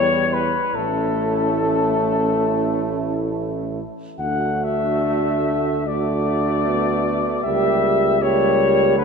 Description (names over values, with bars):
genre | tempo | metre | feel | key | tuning
classical, hymn-like piece for brass band | 68-78 BPM | 4/4 | rubato | D major | A4 = 440 Hz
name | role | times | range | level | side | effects
warm flugelhorn | melody | 0.0-9.0 s | A4 to F#5 | -21 LUFS | left 7 dB | none
warm French horn section | second line | 0.0-9.0 s | E4 to A4 | -25 LUFS | right 9 dB | none
brilliant trombone | accompaniment | 0.0-9.0 s | F#3 to A3 | -26 LUFS | right 4 dB | none
mellow euphonium | accompaniment | 0.0-9.0 s | A3 to D4 | -27 LUFS | right 1 dB | none
warm tuba | bass | 0.0-9.0 s | A1 to E2 | -25 LUFS | right 2 dB | none
room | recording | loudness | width
wet church reverb, RT60 3.4 s | none | -18 LUFS | side -5 dB against mid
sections
0.0-9.0 A section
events
none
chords
0.0 Em; 0.7 A; 4.2 D; 7.4 C#dim7